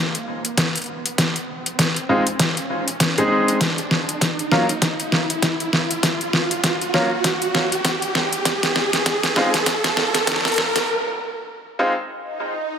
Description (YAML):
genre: glitch hop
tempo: 99 BPM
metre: 4/4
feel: swing 58% on 16ths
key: unclear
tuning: A4 = 440 Hz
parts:
  - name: riser and swell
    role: sound effects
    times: 0.0-12.8 s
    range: none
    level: -24 LUFS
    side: right 1 dB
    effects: none
  - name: dubstep drum kit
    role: drums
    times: 0.1-10.9 s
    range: hi-hat, snare drum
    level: -20 LUFS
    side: equal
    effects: overdrive
  - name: electronic kick drum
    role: drums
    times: 0.6-10.4 s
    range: none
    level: -26 LUFS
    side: right 1 dB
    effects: overdrive, high-pass filter on kick, high-pass filter on room
  - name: bright concert grand piano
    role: stabs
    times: 2.1-11.9 s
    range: Gb3 to Ab4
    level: -22 LUFS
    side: equal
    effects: vintage 12-bit sampler grit, sidechain pumping, low-pass filter, tape echo
room: moderate plate reverb, RT60 2.8 s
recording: high-pass filter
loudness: -18 LUFS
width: side -7 dB against mid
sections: 0.0-12.8 A section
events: build-up 0.0-12.8; drum fill 0.0-10.9; riser 0.0-10.9; break 10.9-12.8; swell 12.1-12.8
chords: 0.0 Fm7 (rootless); 3.6 Gbmaj7; 8.5 Fm7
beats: 0.58 | 1.19 1.79 2.40 3.00 | 3.61 4.22 4.82 5.43 | 6.04 6.64 7.25 7.85 | 8.46 9.06 9.67 10.28 | 10.88 11.49 12.10 12.70